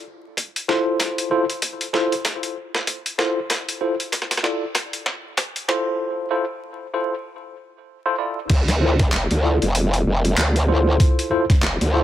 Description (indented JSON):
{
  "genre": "glitch hop",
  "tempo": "96 BPM",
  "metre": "4/4",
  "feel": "swing 59% on 16ths",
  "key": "D minor",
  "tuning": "A4 = 440 Hz",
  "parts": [
    { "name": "boom bap sampler-style drum kit", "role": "drums", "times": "0.4-11.9 s", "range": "crash cymbal, handclaps, hi-hat, snare drum", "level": "-24 LUFS", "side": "equal", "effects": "high-pass filter on hats, high-pass filter on snare, high-pass filter on cymbals" },
    { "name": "electronic kick drum", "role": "drums", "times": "0.4-11.6 s", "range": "none", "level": "-18 LUFS", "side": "equal", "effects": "high-pass filter on kick" },
    { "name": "tine electric piano", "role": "stabs", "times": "0.7-12.0 s", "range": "E4 to D5", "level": "-23 LUFS", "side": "left 1 dB", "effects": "overdrive, fast stereo tremolo, vintage 12-bit sampler grit, sidechain pumping, ping-pong delay" },
    { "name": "growl bass", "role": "bass", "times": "8.5-12.0 s", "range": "F1 to D2", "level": "-18 LUFS", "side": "equal", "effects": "chorus" }
  ],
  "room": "light reverb",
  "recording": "vinyl crackle, high-pass filter",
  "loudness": "-19 LUFS",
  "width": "side -12 dB against mid",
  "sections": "0.0-8.5 A section; 8.5-12.0 B section",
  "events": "build-up 0.0-8.5; drum fill 0.0-6.0; filter sweep 0.0-8.5; break 6.0-8.5; drop 8.5-12.0",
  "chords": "0.0 Dm7 (rootless); 8.5 Dm7"
}